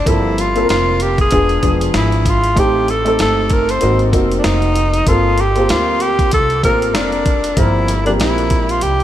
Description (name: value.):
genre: hip hop, jazz-hop.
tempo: 96 BPM.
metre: 4/4.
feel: swing 58% on 16ths.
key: unclear.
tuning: A4 = 440 Hz.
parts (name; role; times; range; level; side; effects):
breathy alto saxophone; melody; 0.0-9.0 s; D4 to C5; -17 LUFS; equal; diffuse ambient delay.
upright bass; bass; 0.0-9.0 s; E1 to D2; -19 LUFS; equal; none.
dark upright piano; accompaniment; 0.1-8.8 s; F3 to Bb4; -18 LUFS; left 1 dB; wide subtle chorus.
dusty soul sampler-style drum kit; drums; 0.1-9.0 s; hi-hat, kick drum, snare drum; -19 LUFS; equal; none.
room: moderate huge ambient reverb, RT60 6.8 s.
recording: dreamy mix soaked in reverb.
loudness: -12 LUFS.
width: side -12 dB against mid.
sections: 0.1-9.0 A section.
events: none.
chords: 0.1 Gm11; 1.3 E7b9; 2.6 Am7b5; 3.8 Ab9; 5.1 Gm11.